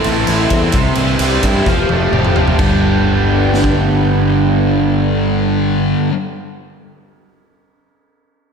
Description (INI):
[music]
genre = rock, shoegaze and dream pop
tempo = 130 BPM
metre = 4/4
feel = straight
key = G mixolydian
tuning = A4 = 440 Hz
[part]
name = airy breathy pad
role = sustained chords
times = 0.0-6.0 s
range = D4 to C6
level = -21 LUFS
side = left 1 dB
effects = chorus
[part]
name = overdriven electric guitar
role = riff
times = 0.0-6.1 s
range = G2 to G4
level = -17 LUFS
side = right 7 dB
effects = reverse reverb
[part]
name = thick fuzz guitar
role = riff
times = 0.0-6.1 s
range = G2 to A4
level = -18 LUFS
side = left 8 dB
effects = distortion, lush chorus
[part]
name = raw garage drum kit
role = drums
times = 0.0-3.7 s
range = crash cymbal, kick drum, ride cymbal, snare drum, toms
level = -18 LUFS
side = equal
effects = none
[part]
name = growling fingered electric bass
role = bass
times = 0.1-5.9 s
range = F1 to G2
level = -19 LUFS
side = equal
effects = overdrive
[sound]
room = moderate lush hall reverb, RT60 2.0 s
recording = dreamy mix soaked in reverb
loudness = -12 LUFS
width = side -6 dB against mid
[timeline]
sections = 0.0-2.6 A section; 2.6-6.3 B section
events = drum fill 1.7-2.6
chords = 0.0 Am; 0.7 C; 1.7 Fadd9; 2.6 G